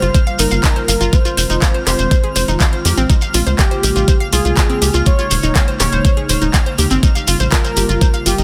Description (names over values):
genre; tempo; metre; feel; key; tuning
progressive house; 122 BPM; 4/4; straight; unclear; A4 = 438 Hz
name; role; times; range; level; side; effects
warm velvety synth lead; melody; 0.0-8.4 s; G4 to Db5; -24 LUFS; equal; chorus, dub echo
airy breathy pad; sustained chords; 0.0-8.4 s; Db3 to F4; -26 LUFS; equal; chorus, sidechain pumping
analog pluck; arpeggios; 0.0-8.4 s; C4 to F5; -24 LUFS; equal; chorus, sidechain pumping, dub echo
tight sequencer bass; bass; 0.0-8.4 s; Eb1 to F2; -19 LUFS; equal; tube saturation, sidechain pumping
pop drum kit; drums; 0.0-8.4 s; handclaps, hi-hat, rim click; -24 LUFS; equal; sidechain pumping on hats, studio reverb
shekere; percussion; 0.0-8.4 s; none; -24 LUFS; equal; none
twinkling granular texture; texture; 0.0-8.4 s; F6; -33 LUFS; equal; built-in reverb, sidechain pumping
electronic kick drum; drums; 0.1-8.1 s; none; -16 LUFS; equal; studio reverb
room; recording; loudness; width
little or no reverb; none; -14 LUFS; mono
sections
0.0-8.4 A section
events
filter sweep on analog synth pad 0.0-8.4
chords
0.0 Gm7b5; 1.1 Fm7; 3.1 Bbm7; 5.1 Eb7sus4; 7.0 Gm7b5